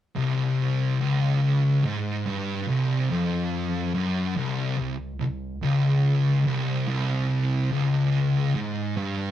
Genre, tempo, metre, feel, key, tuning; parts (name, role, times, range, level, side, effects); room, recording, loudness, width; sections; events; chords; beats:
metal; 72 BPM; 4/4; straight; A4 = 440 Hz
thick fuzz guitar; riff; 0.2-9.3 s; C2 to Ab2; -24 LUFS; left 2 dB; distortion
thick fuzz guitar; riff; 0.2-9.3 s; C2 to Ab2; -28 LUFS; right 4 dB; distortion
moderate studio reverb, RT60 0.6 s; rough rehearsal-room recording, tube saturation; -22 LUFS; side -11 dB against mid
0.2-9.3 A section
0.2 C5
| 0.16 1.00 1.84 2.68 | 3.52 4.36 5.20 6.04 | 6.88 7.72 8.55